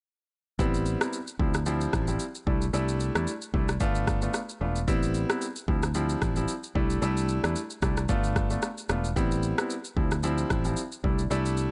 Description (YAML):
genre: afrobeats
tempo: 112 BPM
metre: 4/4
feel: swing 55% on 16ths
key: C major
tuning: A4 = 439 Hz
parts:
  - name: clear grand piano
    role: accompaniment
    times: 0.6-11.7 s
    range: F3 to F4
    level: -33 LUFS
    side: equal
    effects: none
  - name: fingered electric bass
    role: bass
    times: 0.6-11.7 s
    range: E1 to E2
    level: -31 LUFS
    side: equal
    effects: none
  - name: afro-pop drum kit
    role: drums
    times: 0.6-11.7 s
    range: kick drum, rim click, shaker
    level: -32 LUFS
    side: equal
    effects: none
room: digital ambience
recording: dry, gritty hardware recording, nothing above 10.7 kHz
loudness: -28 LUFS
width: mono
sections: 0.6-11.7 A section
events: none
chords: 0.6 Am7; 1.4 Dm11; 2.5 C69; 3.8 G7; 4.9 Am7; 5.7 Dm11; 6.8 C69; 8.1 G7; 9.2 Am7; 10.0 Dm11; 11.0 C69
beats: | 0.59 1.13 1.66 2.20 | 2.74 3.27 3.81 4.34 | 4.88 5.41 5.95 6.49 | 7.02 7.56 8.09 8.63 | 9.16 9.70 10.24 10.77 | 11.31